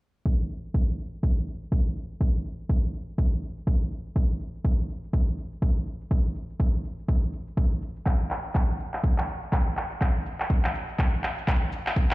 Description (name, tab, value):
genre	afro house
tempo	123 BPM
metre	4/4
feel	swing 58% on 16ths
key	none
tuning	none
part	electronic cabasa and handclaps	drums	0.3-12.1 s	none	-30 LUFS	equal	studio reverb
part	electronic kick drum	drums	0.3-12.1 s	none	-24 LUFS	equal	overdrive, studio reverb
room	little or no reverb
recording	played on a big sound system in a bare room, stone room reverb, low-pass filter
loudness	-24 LUFS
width	side -20 dB against mid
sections	0.3-12.1 A section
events	filter sweep 0.3-12.1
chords	none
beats	| 0.26 0.74 1.23 1.72 | 2.21 2.70 3.18 3.67 | 4.16 4.65 5.13 5.62 | 6.11 6.60 7.09 7.57 | 8.06 8.55 9.04 9.53 | 10.01 10.50 10.99 11.48 | 11.96